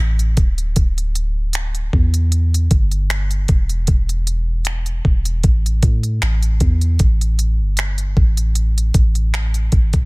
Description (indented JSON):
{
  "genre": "contemporary R&B",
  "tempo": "77 BPM",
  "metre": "4/4",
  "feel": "swing 54% on 16ths",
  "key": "unclear",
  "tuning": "A4 = 439 Hz",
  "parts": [
    { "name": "soft 808-style bass", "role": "bass", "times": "0.0-10.1 s", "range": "D1 to A2", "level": "-17 LUFS", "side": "equal", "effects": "none" },
    { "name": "smooth R&B drum kit", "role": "drums", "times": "0.2-10.1 s", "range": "finger snaps, hi-hat, kick drum", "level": "-16 LUFS", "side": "equal", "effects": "soft clipping on snare" }
  ],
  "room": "little or no reverb",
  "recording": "dense, heavily limited modern master",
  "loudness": "-15 LUFS",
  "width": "side -27 dB against mid",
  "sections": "0.0-10.1 A section",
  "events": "none",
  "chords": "none"
}